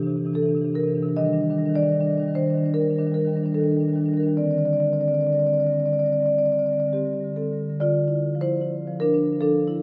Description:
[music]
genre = classical, contemporary piece for solo marimba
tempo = 67-78 BPM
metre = 4/4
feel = rubato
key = D minor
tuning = A4 = 441 Hz
[part]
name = marimba with medium mallets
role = solo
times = 0.0-9.8 s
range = C3 to Eb5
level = -23 LUFS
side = equal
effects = none
[sound]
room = wet cathedral reverb, RT60 5.2 s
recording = none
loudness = -23 LUFS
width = mono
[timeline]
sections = 0.0-7.8 A section; 7.8-9.8 A section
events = none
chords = 0.0 Cadd9; 1.2 Ebmaj7; 4.4 D7sus4; 7.8 Dmadd9

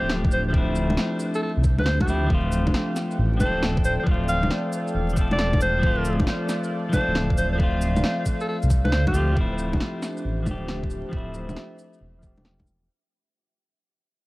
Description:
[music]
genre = future garage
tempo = 136 BPM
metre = 4/4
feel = swing 67% on 16ths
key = D minor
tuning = A4 = 435 Hz
[part]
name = clear alto saxophone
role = melody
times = 0.0-9.4 s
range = G4 to F5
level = -28 LUFS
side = equal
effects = tape echo
[part]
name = clean electric guitar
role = accompaniment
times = 0.0-12.9 s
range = F3 to A4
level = -28 LUFS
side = left 1 dB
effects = sidechain pumping, low-pass filter, tape echo
[part]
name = dark analog pad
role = sustained chords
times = 0.0-12.9 s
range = D4 to G5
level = -35 LUFS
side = right 1 dB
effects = chorus, phaser, vintage 12-bit sampler grit, sidechain pumping
[part]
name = dark detuned saw bass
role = bass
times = 0.0-12.9 s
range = D1 to D2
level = -24 LUFS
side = equal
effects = sidechain pumping
[part]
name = electronic snare drum, shaker, bongos and cabasa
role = drums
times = 0.1-12.8 s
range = none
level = -27 LUFS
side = equal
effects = small room ambience
[part]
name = electronic kick drum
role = drums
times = 0.2-12.7 s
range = none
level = -23 LUFS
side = equal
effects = small room ambience
[sound]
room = little or no reverb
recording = vinyl crackle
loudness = -21 LUFS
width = side -20 dB against mid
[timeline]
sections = 0.0-9.4 A section; 9.4-12.9 B section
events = fade-out 9.4-12.9; filter sweep on clean electric guitar 9.4-12.9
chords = 0.0 Dm9

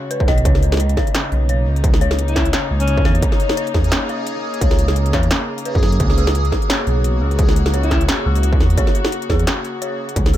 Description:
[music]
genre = half-time drum and bass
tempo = 173 BPM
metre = 4/4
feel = swing 56% on 16ths, half-time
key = C# dorian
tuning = A4 = 441 Hz
[part]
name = dark chamber string section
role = sustained chords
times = 0.0-10.4 s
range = C#3 to F#4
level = -27 LUFS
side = left 1 dB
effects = vintage 12-bit sampler grit, sidechain pumping
[part]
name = dark detuned synth bell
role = arpeggios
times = 0.0-10.4 s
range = G#4 to D#5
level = -26 LUFS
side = left 3 dB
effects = chorus, phaser, vintage 12-bit sampler grit, dub echo
[part]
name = industrial drum kit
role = drums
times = 0.1-10.4 s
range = hi-hat, snare drum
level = -22 LUFS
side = equal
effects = none
[part]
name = electronic kick drum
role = drums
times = 0.2-10.2 s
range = none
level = -18 LUFS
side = equal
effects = distortion
[part]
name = dark detuned saw bass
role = bass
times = 0.3-10.4 s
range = B1 to F#2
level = -17 LUFS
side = equal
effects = none
[part]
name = backwards swelling texture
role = texture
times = 0.5-10.4 s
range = G#4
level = -30 LUFS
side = right 4 dB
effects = built-in reverb
[part]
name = warm alto saxophone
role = melody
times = 2.3-3.1, 7.8-8.0 s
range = C#4 to E4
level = -28 LUFS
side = left 2 dB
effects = dub echo
[sound]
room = digital ambience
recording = echo-heavy mix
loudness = -15 LUFS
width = side -13 dB against mid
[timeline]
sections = 0.0-10.4 A section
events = none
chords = 0.0 C#sus2

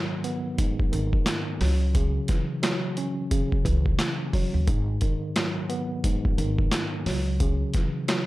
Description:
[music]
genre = hip hop, boom-bap hip-hop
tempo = 88 BPM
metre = 4/4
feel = swing 60% on 16ths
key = G# minor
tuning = A4 = 436 Hz
[part]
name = tine electric piano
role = accompaniment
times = 0.0-8.3 s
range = G#2 to C#4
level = -28 LUFS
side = equal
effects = fast stereo tremolo, cassette tape, high-pass filter, low-pass filter
[part]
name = boom bap sampler-style drum kit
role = drums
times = 0.2-8.3 s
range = handclaps, hi-hat, kick drum, snare drum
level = -25 LUFS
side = equal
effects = none
[part]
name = upright bass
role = bass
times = 0.9-7.6 s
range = G#1 to D#2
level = -25 LUFS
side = equal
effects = tube saturation
[sound]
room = digital ambience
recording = dry, gritty hardware recording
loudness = -23 LUFS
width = side -18 dB against mid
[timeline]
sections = 0.0-8.3 A section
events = none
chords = 0.0 G#m7; 1.6 C#m; 4.7 G#m7; 7.1 C#m

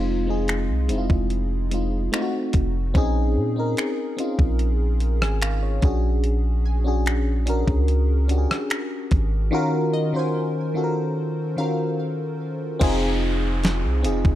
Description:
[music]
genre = contemporary R&B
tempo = 73 BPM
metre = 4/4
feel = straight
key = Bb minor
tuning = A4 = 439 Hz
[part]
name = FM electric piano with soft pad layer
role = accompaniment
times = 0.0-14.4 s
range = Eb3 to Ab5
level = -24 LUFS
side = left 1 dB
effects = chorus
[part]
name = long sustained 808-style bass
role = bass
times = 0.0-14.4 s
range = F1 to Bb2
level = -22 LUFS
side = equal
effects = none
[part]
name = crisp 8-bit digital drum machine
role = drums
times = 0.5-14.4 s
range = crash cymbal, finger snaps, hi-hat, kick drum, rim click, snare drum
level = -23 LUFS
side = equal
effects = none
[part]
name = glassy wavetable pluck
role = texture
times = 6.7-14.4 s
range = Eb5 to Bb5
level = -38 LUFS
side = left 1 dB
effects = chorus, tape echo
[part]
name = downlifter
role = sound effects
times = 12.8-14.4 s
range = none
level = -32 LUFS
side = right 1 dB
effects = none
[sound]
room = digital ambience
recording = dark, warm production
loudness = -20 LUFS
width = side -13 dB against mid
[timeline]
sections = 0.0-12.8 A section; 12.8-14.4 B section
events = break 9.5-12.8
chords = 0.0 Fm7; 2.1 F7b9; 2.9 Bbm11; 5.8 Bb7alt; 9.5 Ebm9; 12.8 Fm7

